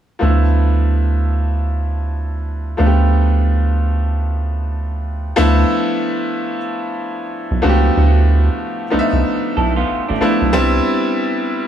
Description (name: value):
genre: R&B, neo-soul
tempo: 93 BPM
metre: 4/4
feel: swing 60% on 16ths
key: D dorian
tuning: A4 = 440 Hz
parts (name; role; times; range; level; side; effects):
- bright upright piano; accompaniment; 0.2-11.7 s; F3 to E5; -18 LUFS; left 1 dB; none
- rubbery square bass; bass; 0.2-10.8 s; A1 to D2; -15 LUFS; right 1 dB; none
- electric guitar through a small old amp; second line; 9.6-10.5 s; A3 to A4; -21 LUFS; right 5 dB; lush chorus
room: studio ambience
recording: none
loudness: -14 LUFS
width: side -10 dB against mid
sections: 0.2-5.4 A section; 5.4-11.7 B section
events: none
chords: 0.2 Dm69; 10.5 Cmaj9